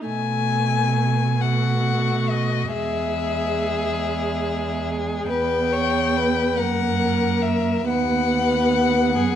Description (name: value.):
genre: classical, slow romantic movement for string quartet.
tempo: 47 BPM (dotted quarters).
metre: 6/8.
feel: rubato.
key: B major.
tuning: A4 = 440 Hz.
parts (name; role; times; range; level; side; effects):
warm viola; accompaniment; 0.0-9.4 s; G#3 to B3; -25 LUFS; right 2 dB; none.
warm violin; melody; 0.1-9.4 s; D#5 to G#5; -25 LUFS; left 8 dB; none.
warm cello; bass; 0.1-9.4 s; D#2 to B2; -24 LUFS; right 3 dB; none.
warm violin; second line; 1.4-9.4 s; F#4 to C#5; -26 LUFS; left 2 dB; none.
room: wet recital hall reverb, RT60 1.4 s.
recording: dark, warm production.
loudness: -19 LUFS.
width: side -10 dB against mid.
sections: 0.1-9.4 A section.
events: none.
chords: 0.1 B5; 2.7 E; 5.3 Em; 6.6 F#; 7.9 B/D#.